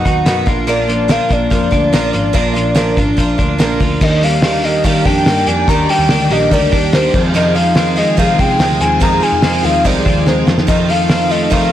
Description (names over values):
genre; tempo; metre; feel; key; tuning
jangly indie pop; 144 BPM; 4/4; straight; Eb major; A4 = 436 Hz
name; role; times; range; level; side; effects
warbly nostalgic lead; melody; 0.0-11.7 s; C5 to Bb5; -17 LUFS; left 2 dB; chorus, slapback echo
picked twelve-string acoustic guitar; accompaniment; 0.0-11.7 s; F2 to G4; -18 LUFS; right 6 dB; none
twelve-string electric guitar; arpeggios; 0.0-11.7 s; F2 to D#4; -18 LUFS; left 2 dB; slapback echo
vintage muted picked electric bass; bass; 0.0-11.7 s; Ab1 to F3; -20 LUFS; equal; none
cloth-damped thuddy drum kit; drums; 0.1-11.6 s; crash cymbal, hi-hat, kick drum, snare drum; -16 LUFS; equal; none
string machine, full ensemble; sustained chords; 4.0-11.7 s; Eb3 to G5; -22 LUFS; equal; ensemble chorus
room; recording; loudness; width
light reverb, small room ambience; blown-out, overdriven recording, vinyl crackle, overdrive; -11 LUFS; side -11 dB against mid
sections
0.0-4.0 A section; 4.0-11.7 B section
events
drum fill 10.3-10.7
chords
0.5 Bb; 4.0 Ebmaj7; 7.1 Fm7; 10.5 F7